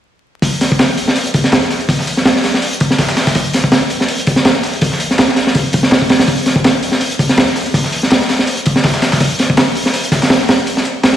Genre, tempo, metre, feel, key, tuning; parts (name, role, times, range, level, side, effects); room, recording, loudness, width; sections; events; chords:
drum and bass, jungle; 164 BPM; 4/4; swing 55% on 16ths
crunchy breakbeat drum kit; drums; 0.4-11.2 s; hi-hat, kick drum, snare drum; -11 LUFS; equal; high-pass filter on kick, high-pass filter on hats, high-pass filter on snare, high-pass filter on room
dusty soul sampler-style drum kit; drums; 0.4-11.2 s; hi-hat, snare drum; -21 LUFS; right 1 dB; overdrive, high-pass filter on hats, high-pass filter on snare, high-pass filter on room
moderate lush hall reverb, RT60 2.0 s; played on a big sound system in a bare room, large studio reverb, vinyl crackle; -11 LUFS; side -11 dB against mid
0.4-11.2 A section